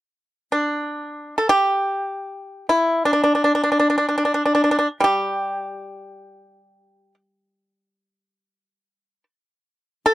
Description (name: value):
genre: chinese traditional, Chinese solo plucked strings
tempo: free time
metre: none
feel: none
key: unclear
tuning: A4 = 440 Hz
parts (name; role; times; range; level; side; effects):
- pipa; solo; 0.5-10.1 s; G3 to A4; -18 LUFS; equal; none
room: little or no reverb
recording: dry, close 1970s-style studio recording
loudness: -18 LUFS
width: side -15 dB against mid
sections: 0.0-10.1 A section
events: none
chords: none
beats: free time